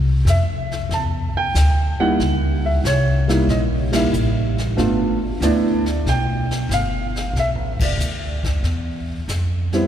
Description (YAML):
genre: jazz piano trio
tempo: 93 BPM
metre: 4/4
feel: swing 69% on 8ths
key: G mixolydian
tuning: A4 = 445 Hz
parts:
  - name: upright bass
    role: bass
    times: 0.0-9.9 s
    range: F1 to F2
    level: -20 LUFS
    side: equal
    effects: none
  - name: warm baby grand piano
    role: melody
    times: 0.3-9.9 s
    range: G3 to A5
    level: -21 LUFS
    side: right 1 dB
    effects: none
  - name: jazz brush drum kit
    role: drums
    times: 0.3-9.9 s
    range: brushed snare drum, hi-hat, kick drum, ride cymbal, snare drum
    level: -29 LUFS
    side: left 2 dB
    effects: none
room: wet cathedral reverb, RT60 4.6 s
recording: recorded in a church or concert hall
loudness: -17 LUFS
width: side -10 dB against mid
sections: 0.0-9.9 A section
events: band accent 3.8-4.1, 7.7-8.0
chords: 0.0 Cadd9; 2.2 C#m6; 4.8 G9; 7.3 Bm7b5; 8.6 E5